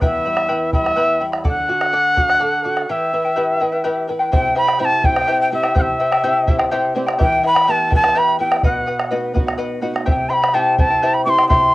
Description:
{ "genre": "andean folk, Andean ensemble", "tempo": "84 BPM (dotted quarters)", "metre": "6/8", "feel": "straight", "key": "unclear", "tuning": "A4 = 436 Hz", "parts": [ { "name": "quena", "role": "melody", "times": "0.0-11.7 s", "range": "E5 to D6", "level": "-17 LUFS", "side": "equal", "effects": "cassette tape" }, { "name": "charango", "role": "accompaniment", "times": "0.0-11.7 s", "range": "E4 to B5", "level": "-20 LUFS", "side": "left 2 dB", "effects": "cassette tape" }, { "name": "flamenco guitar", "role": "accompaniment", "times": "0.0-11.7 s", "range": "E2 to G5", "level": "-26 LUFS", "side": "right 3 dB", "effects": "cassette tape" }, { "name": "bombo", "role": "percussion", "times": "0.0-11.6 s", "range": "none", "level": "-20 LUFS", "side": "right 1 dB", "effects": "none" } ], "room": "wet booth ambience, RT60 0.2 s", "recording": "home recording on cassette", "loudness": "-15 LUFS", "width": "side -18 dB against mid", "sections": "0.0-4.3 A section; 4.3-11.7 B section", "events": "break 2.9-4.3; nylon-string guitar fill 6.5-7.2", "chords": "0.0 Em; 1.5 D; 2.9 Em; 4.3 C; 7.2 Em; 8.6 B; 10.1 C", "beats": "| 0.02 0.74 | 1.45 2.17 | 2.89 3.61 | 4.32 5.04 | 5.76 6.47 | 7.19 7.91 | 8.63 9.35 | 10.06 10.78 | 11.50" }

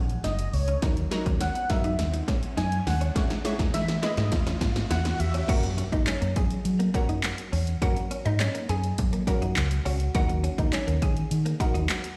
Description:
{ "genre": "dance-pop", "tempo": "103 BPM", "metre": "4/4", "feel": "straight", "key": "F# mixolydian", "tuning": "A4 = 440 Hz", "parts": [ { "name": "analog pluck", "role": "accompaniment", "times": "0.0-12.2 s", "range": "F#3 to C#5", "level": "-37 LUFS", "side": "equal", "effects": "chorus, sidechain pumping" }, { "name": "direct-recorded clean electric guitar", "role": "riff", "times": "0.0-11.9 s", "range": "G#3 to E4", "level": "-40 LUFS", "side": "equal", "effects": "ensemble chorus" }, { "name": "vintage muted fingered electric bass", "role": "bass", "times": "0.0-11.9 s", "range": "F#1 to F#3", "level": "-29 LUFS", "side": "equal", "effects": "sidechain pumping" }, { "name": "riser and impact", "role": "sound effects", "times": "0.0-7.8 s", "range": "none", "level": "-41 LUFS", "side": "equal", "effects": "none" }, { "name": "punchy analog drum machine", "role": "drums", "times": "0.1-12.2 s", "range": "crash cymbal, handclaps, hi-hat, kick drum, snare drum", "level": "-30 LUFS", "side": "equal", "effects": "none" }, { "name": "warm velvety synth lead", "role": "melody", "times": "0.2-5.5 s", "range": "C#5 to G#5", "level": "-36 LUFS", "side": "equal", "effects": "chorus, dub echo" }, { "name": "hollow square pluck", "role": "melody", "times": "5.5-11.8 s", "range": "C#4 to G#5", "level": "-36 LUFS", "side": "equal", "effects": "chorus, sidechain pumping, dub echo" } ], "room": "light reverb, digital ambience", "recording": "played on a big sound system in a bare room, stone room reverb", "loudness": "-26 LUFS", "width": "mono", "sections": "0.0-5.5 A section; 5.5-12.2 B section", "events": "build-up 0.0-5.5; drum fill 0.0-5.5; riser 0.0-5.5; drop 5.5-12.2; impact 5.5-7.8", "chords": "0.0 F#; 0.8 D#m; 3.2 C#m/E; 5.5 F#; 10.1 D#m", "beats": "0.24 | 0.83 1.41 1.99 2.57 | 3.16 3.74 4.32 4.90 | 5.49 6.07 6.65 7.24 | 7.82 8.40 8.98 9.56 | 10.15 10.73 11.31 11.89" }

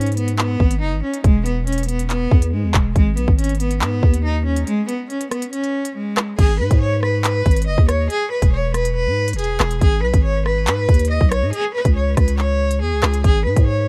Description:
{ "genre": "hip hop, drill", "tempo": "140 BPM", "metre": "4/4", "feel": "half-time", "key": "G# minor", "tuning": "A4 = 440 Hz", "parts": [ { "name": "rich cello", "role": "melody", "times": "0.0-13.8 s", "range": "G#3 to D#5", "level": "-24 LUFS", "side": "equal", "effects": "digital delay" }, { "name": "growling 808-style bass", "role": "bass", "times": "0.0-13.9 s", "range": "E1 to G#2", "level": "-22 LUFS", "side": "equal", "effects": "none" }, { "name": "drill drum kit", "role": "drums", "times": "0.0-13.7 s", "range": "crash cymbal, handclaps, hi-hat, kick drum, rim click", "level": "-19 LUFS", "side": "equal", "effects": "none" } ], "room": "little or no reverb", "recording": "dark, warm production", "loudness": "-18 LUFS", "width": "mono", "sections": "0.0-6.4 A section; 6.4-13.9 B section", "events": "break 4.7-6.4", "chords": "0.0 G#m; 1.2 E; 3.0 G#m; 4.7 N.C.; 6.4 G#m; 8.1 E; 9.8 G#m; 11.5 C#5; 13.2 G#m", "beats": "0.39 0.81 | 1.24 1.67 2.10 2.53 | 2.96 3.39 3.81 4.24 | 4.67 5.10 5.53 5.96 | 6.39 6.81 7.24 7.67 | 8.10 8.53 8.96 9.39 | 9.81 10.24 10.67 11.10 | 11.53 11.96 12.39 12.81 | 13.24 13.67" }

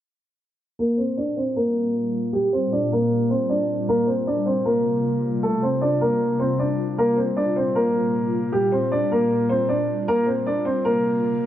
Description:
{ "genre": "hip hop", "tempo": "155 BPM", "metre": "4/4", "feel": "half-time", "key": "G minor", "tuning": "A4 = 442 Hz", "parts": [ { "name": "dark concert grand piano", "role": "melody", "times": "0.8-11.5 s", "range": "G3 to D5", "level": "-20 LUFS", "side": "equal", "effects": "low-pass filter" }, { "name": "ethereal airy pad", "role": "sustained chords", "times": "1.3-11.5 s", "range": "Bb2 to F4", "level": "-27 LUFS", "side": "left 1 dB", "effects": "ensemble chorus, built-in reverb, low-pass filter" } ], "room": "moderate concert hall reverb, RT60 1.9 s, small room reverb", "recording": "none", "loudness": "-19 LUFS", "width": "side -11 dB against mid", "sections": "0.8-11.5 A section", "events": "filter sweep 0.8-11.5", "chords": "0.8 Gm7; 3.9 Fsus2; 7.0 Gm7; 10.1 Fsus2", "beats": "| 0.79 1.17 1.56 1.95 | 2.33 2.72 3.11 3.50 | 3.88 4.27 4.66 5.04 | 5.43 5.82 6.21 6.59 | 6.98 7.37 7.75 8.14 | 8.53 8.92 9.30 9.69 | 10.08 10.46 10.85 11.24" }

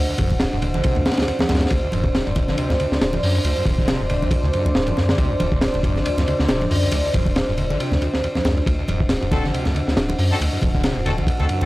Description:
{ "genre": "breakbeat, breaks", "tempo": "138 BPM", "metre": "4/4", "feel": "swing 56% on 16ths", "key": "D mixolydian", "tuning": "A4 = 439 Hz", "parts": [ { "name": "dark analog pad", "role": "sustained chords", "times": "0.0-11.7 s", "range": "D4 to F#5", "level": "-25 LUFS", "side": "equal", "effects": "chorus, sidechain pumping" }, { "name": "saturated sub bass", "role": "bass", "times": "0.0-11.7 s", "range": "D1 to F#2", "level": "-23 LUFS", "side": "equal", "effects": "none" }, { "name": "overdriven acid bass", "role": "riff", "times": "0.1-11.6 s", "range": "D2 to D3", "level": "-25 LUFS", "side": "equal", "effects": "distortion, wide subtle chorus" }, { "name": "crunchy breakbeat drum kit", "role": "drums", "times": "0.2-11.6 s", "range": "hi-hat, kick drum, ride cymbal, snare drum", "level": "-22 LUFS", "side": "equal", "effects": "none" }, { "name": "congas", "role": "percussion", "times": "0.2-11.7 s", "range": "none", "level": "-28 LUFS", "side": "right 2 dB", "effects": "none" }, { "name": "warm horn section", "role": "stabs", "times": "9.3-11.7 s", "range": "C4 to A4", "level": "-28 LUFS", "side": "left 2 dB", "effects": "analog delay" } ], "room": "small room ambience", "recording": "dry, gritty hardware recording, transformer saturation", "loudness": "-18 LUFS", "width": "side -18 dB against mid", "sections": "0.0-11.7 A section", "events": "none", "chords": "0.0 D7", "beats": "0.40 0.84 1.27 | 1.71 2.14 2.58 3.01 | 3.45 3.88 4.32 4.75 | 5.19 5.62 6.06 6.49 | 6.93 7.36 7.79 8.23 | 8.66 9.10 9.53 9.97 | 10.40 10.84 11.27" }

